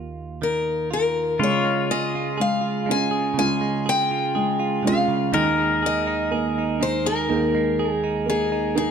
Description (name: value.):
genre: acoustic folk-pop ballad.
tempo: 61 BPM.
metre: 4/4.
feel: straight.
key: unclear.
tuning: A4 = 440 Hz.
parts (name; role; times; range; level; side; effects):
picked acoustic archtop guitar; melody; 0.0-8.9 s; G4 to Ab5; -24 LUFS; left 4 dB; none.
direct-recorded clean electric guitar; accompaniment; 0.0-8.9 s; Eb2 to Ab4; -26 LUFS; right 6 dB; none.
pedal steel guitar; second line; 1.4-8.9 s; F4 to Bb4; -28 LUFS; left 5 dB; none.
felt-muted upright piano; arpeggios; 1.4-8.9 s; Eb3 to Ab4; -25 LUFS; right 2 dB; none.
room: light reverb.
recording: close, detailed microphones.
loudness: -20 LUFS.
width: side -7 dB against mid.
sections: 0.0-1.4 A section; 1.4-8.9 B section.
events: none.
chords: 0.0 Ebadd9; 1.4 Db; 5.3 Ebsus4.